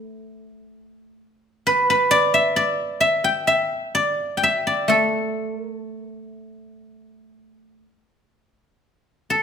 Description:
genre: chinese traditional, Chinese solo plucked strings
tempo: 60-67 BPM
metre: 4/4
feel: rubato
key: unclear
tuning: A4 = 441 Hz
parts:
  - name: guzheng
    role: solo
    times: 0.0-9.4 s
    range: A3 to G5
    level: -18 LUFS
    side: equal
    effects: none
room: moderate recital hall reverb, RT60 1.4 s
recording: minimal, uncompressed stereo recording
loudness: -18 LUFS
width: side -7 dB against mid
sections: 0.0-9.4 A section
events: none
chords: none

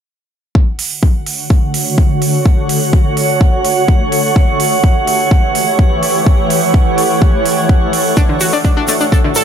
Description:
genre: progressive house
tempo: 126 BPM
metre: 4/4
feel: straight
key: D major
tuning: A4 = 440 Hz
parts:
  - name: shimmering ambient pad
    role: sustained chords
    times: 1.2-9.4 s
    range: A2 to C#5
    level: -15 LUFS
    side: equal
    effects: chorus, built-in reverb, sidechain pumping
  - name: electronic kick drum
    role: drums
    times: 0.6-9.2 s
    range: none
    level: -11 LUFS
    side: equal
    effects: none
  - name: drifting glass-harmonics texture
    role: texture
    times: 1.3-9.4 s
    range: F#5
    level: -20 LUFS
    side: right 4 dB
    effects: chorus, built-in reverb, sidechain pumping
  - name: electronic hi-hat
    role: drums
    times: 0.8-9.4 s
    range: none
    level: -20 LUFS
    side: right 6 dB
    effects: none
  - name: analog pluck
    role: arpeggios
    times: 8.2-9.4 s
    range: D3 to A4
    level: -15 LUFS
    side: left 1 dB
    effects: chorus, sidechain pumping, ping-pong delay
  - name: tube shaker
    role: percussion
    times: 8.2-9.4 s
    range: none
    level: -20 LUFS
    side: left 4 dB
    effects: none
room: light reverb, digital ambience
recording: none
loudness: -10 LUFS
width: side -8 dB against mid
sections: 0.6-9.4 A section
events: filter sweep on ambient pad 0.6-9.4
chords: 0.6 Dmaj7; 4.4 A7; 8.2 Dmaj7/A

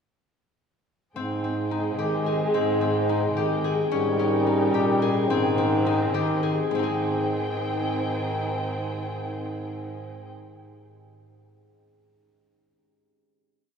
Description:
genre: contemporary instrumental, chamber music in an uneven meter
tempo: 216 BPM (eighths)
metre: 5/8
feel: straight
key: Ab major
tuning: A4 = 440 Hz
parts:
  - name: muted studio string section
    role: sustained chords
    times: 1.1-10.3 s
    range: C4 to G5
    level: -33 LUFS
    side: equal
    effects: none
  - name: mellow French horn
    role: second line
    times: 1.2-10.3 s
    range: Eb3 to Ab3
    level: -28 LUFS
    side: equal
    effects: none
  - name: concert harp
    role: arpeggios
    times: 1.2-11.0 s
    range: Ab3 to Ab4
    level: -27 LUFS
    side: left 3 dB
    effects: none
  - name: mellow bass clarinet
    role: bass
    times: 1.2-10.3 s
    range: Ab2 to Eb3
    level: -29 LUFS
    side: right 2 dB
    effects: none
room: wet church reverb, RT60 3.5 s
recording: recorded in a church or concert hall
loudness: -22 LUFS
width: side -6 dB against mid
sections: 1.2-6.7 climax; 6.7-9.5 final chord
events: slowing down 3.9-6.7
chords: 1.2 Abmaj7; 3.9 Eb/Ab; 5.3 Abmaj7

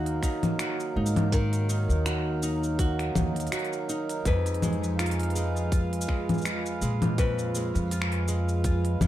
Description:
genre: folktronica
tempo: 82 BPM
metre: 4/4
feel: swing 56% on 16ths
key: Eb minor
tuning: A4 = 440 Hz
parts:
  - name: pedal harmonium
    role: sustained chords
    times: 0.0-9.1 s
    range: Gb3 to F5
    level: -34 LUFS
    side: right 2 dB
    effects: none
  - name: nylon-string guitar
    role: arpeggios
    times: 0.0-9.1 s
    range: F2 to Cb5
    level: -32 LUFS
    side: equal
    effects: tape echo
  - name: upright bass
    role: bass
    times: 0.0-9.1 s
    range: Eb2 to Bb2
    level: -27 LUFS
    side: equal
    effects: none
  - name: organic electronic drum kit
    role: drums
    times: 0.1-9.1 s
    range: cabasa, congas, finger snaps, hi-hat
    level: -31 LUFS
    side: left 1 dB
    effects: none
  - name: electronic kick drum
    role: drums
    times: 0.2-9.1 s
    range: none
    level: -27 LUFS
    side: equal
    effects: none
room: small room ambience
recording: dark, warm production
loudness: -25 LUFS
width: side -13 dB against mid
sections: 0.0-9.1 A section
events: none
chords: 0.0 Ebm; 4.3 Fdim

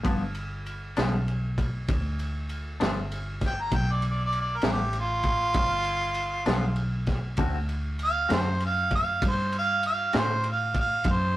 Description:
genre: slow blues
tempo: 65 BPM (dotted quarters)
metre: 12/8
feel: straight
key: G mixolydian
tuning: A4 = 439 Hz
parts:
  - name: semi-hollow electric guitar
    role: accompaniment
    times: 0.0-10.3 s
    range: G2 to F#4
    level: -30 LUFS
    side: left 2 dB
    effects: harmonic tremolo
  - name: vintage muted fingered electric bass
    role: bass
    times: 0.0-11.4 s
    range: G1 to A2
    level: -30 LUFS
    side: equal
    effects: none
  - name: crunchy breakbeat drum kit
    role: drums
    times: 0.0-11.2 s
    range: kick drum, ride cymbal, snare drum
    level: -30 LUFS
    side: equal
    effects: none
  - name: clear harmonica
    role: melody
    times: 3.5-11.4 s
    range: F4 to Bb5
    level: -26 LUFS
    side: right 1 dB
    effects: overdrive
room: moderate studio ambience, RT60 0.5 s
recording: rough rehearsal-room recording, tube saturation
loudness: -24 LUFS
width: side -15 dB against mid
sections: 0.0-11.4 A section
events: harmonica solo 0.0-11.4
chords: 0.0 G7; 7.4 D7

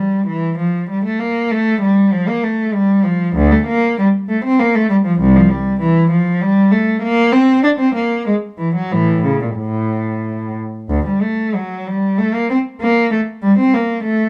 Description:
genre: classical, baroque-style suite movement for unaccompanied cello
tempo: 88-99 BPM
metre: 3/4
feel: rubato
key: unclear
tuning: A4 = 441 Hz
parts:
  - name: warm cello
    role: solo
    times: 0.0-14.3 s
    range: C2 to D4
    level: -16 LUFS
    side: equal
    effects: none
room: light reverb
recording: dark, warm production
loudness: -16 LUFS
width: mono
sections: 0.0-10.9 A section; 10.9-14.3 B section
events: none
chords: none

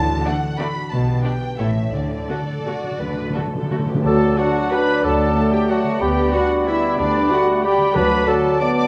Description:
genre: classical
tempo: 161-200 BPM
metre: 3/4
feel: rubato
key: D major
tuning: A4 = 440 Hz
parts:
  - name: warm studio violin section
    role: melody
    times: 0.0-8.7 s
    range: D5 to B5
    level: -32 LUFS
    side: equal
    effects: none
  - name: concert harp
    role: arpeggios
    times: 0.0-8.9 s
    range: A2 to D5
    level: -31 LUFS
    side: equal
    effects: none
  - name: rich symphonic double bass section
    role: bass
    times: 0.0-8.2 s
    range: A1 to D2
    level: -30 LUFS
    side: equal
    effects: none
  - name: warm symphonic cello section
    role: bass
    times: 0.0-8.2 s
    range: D2 to D3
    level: -29 LUFS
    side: equal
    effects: none
  - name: timpani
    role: percussion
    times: 0.0-4.5, 8.0-8.4 s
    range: D3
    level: -29 LUFS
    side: equal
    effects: none
  - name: rich symphonic violin section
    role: second line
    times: 0.2-8.9 s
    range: F#4 to D6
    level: -30 LUFS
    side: equal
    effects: none
  - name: rich symphonic viola section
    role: accompaniment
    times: 0.3-8.9 s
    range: A3 to D5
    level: -30 LUFS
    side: equal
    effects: none
  - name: dark bassoon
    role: accompaniment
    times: 4.0-8.9 s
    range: F#3 to G3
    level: -26 LUFS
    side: equal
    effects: none
  - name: dark French horn section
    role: sustained chords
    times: 4.0-8.9 s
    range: F#3 to F#4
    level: -25 LUFS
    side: equal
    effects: none
  - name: clear oboe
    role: second line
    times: 4.1-8.9 s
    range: D5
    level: -30 LUFS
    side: equal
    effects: none
  - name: concert flute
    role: second line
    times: 4.1-8.9 s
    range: A5 to B5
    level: -27 LUFS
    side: equal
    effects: none
  - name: warm clarinet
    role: second line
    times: 4.1-8.9 s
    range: D4 to D5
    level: -24 LUFS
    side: equal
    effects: none
room: wet recital hall reverb, RT60 1.6 s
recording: worn, warbling old tape, cassette tape, warbly pitch drift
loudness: -19 LUFS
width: mono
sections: 0.0-4.1 A section; 4.1-8.9 A section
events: timpani fill 1.9-4.1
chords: 0.0 D; 0.9 G/B; 1.6 A; 1.9 D; 6.0 G/D; 8.0 D

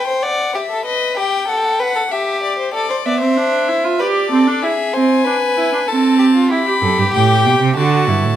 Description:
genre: classical, baroque-style fugue for string quartet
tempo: 96 BPM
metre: 3/4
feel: straight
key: unclear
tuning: A4 = 441 Hz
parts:
  - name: rich violin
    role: melody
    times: 0.0-8.4 s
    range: C5 to B5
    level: -19 LUFS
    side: left 6 dB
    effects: none
  - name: warm violin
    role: second line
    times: 0.0-8.4 s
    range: F4 to D5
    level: -19 LUFS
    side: left 1 dB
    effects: none
  - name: rich viola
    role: accompaniment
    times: 3.1-8.4 s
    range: B3 to A4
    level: -16 LUFS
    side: right 3 dB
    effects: none
  - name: rich cello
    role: bass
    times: 6.8-8.4 s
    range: F#2 to D3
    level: -15 LUFS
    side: right 5 dB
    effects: none
room: moderate recital hall reverb, RT60 1.5 s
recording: close, detailed microphones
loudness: -13 LUFS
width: side -11 dB against mid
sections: 0.0-8.4 A section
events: none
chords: 0.2 D; 0.9 B7; 2.1 Em/G; 2.7 Am (rootless); 4.0 G5; 4.6 E7; 5.9 Am/C; 6.5 Em (rootless); 7.8 D

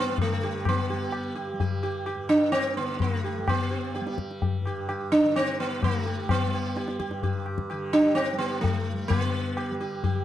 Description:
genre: indian classical, Hindustani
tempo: 128 BPM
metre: 3/4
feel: straight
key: G raga khamaj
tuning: A4 = 440 Hz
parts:
  - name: sitar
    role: melody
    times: 0.0-10.2 s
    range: A3 to G4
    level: -26 LUFS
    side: right 1 dB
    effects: slapback echo, plate reverb
  - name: tanpura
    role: drone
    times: 0.0-10.2 s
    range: G2 to G3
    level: -35 LUFS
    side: right 1 dB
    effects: none
  - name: tabla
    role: percussion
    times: 0.1-10.2 s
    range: none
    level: -28 LUFS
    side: left 4 dB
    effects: none
room: moderate studio reverb, RT60 0.6 s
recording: dark, warm production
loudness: -24 LUFS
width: side -12 dB against mid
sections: 0.0-9.1 A section; 9.1-10.2 B section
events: none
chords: none

